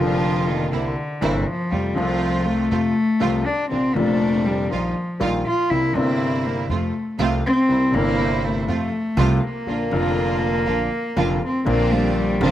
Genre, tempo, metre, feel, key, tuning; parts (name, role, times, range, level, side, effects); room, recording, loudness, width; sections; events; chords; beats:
tango; 121 BPM; 4/4; rubato; Bb major; A4 = 440 Hz
warm cello; second line; 0.0-12.5 s; D3 to F4; -22 LUFS; left 1 dB
warm concert grand piano; accompaniment; 0.0-12.5 s; F1 to F4; -23 LUFS; left 2 dB
bright studio string section; stabs; 0.0-12.5 s; F3 to F4; -28 LUFS; right 7 dB
upright bass; bass; 0.0-12.5 s; F1 to F2; -27 LUFS; right 2 dB
little or no reverb; recorded outdoors, with no room sound; -18 LUFS; side -12 dB against mid
0.0-11.7 A section
cello solo 0.0-11.7
0.0 Bb; 0.7 C7; 1.7 F; 3.7 Bbadd9; 4.7 Ebadd9/Bb; 5.7 C7; 6.7 F; 7.7 C7; 8.7 F; 9.7 Bb; 11.7 Bbadd9
0.22 0.72 1.22 | 1.71 2.21 2.71 3.21 | 3.71 4.21 4.71 5.21 | 5.71 6.21 6.70 7.20 | 7.69 8.19 8.68 9.17 | 9.67 10.17 10.66 11.17 | 11.67 12.17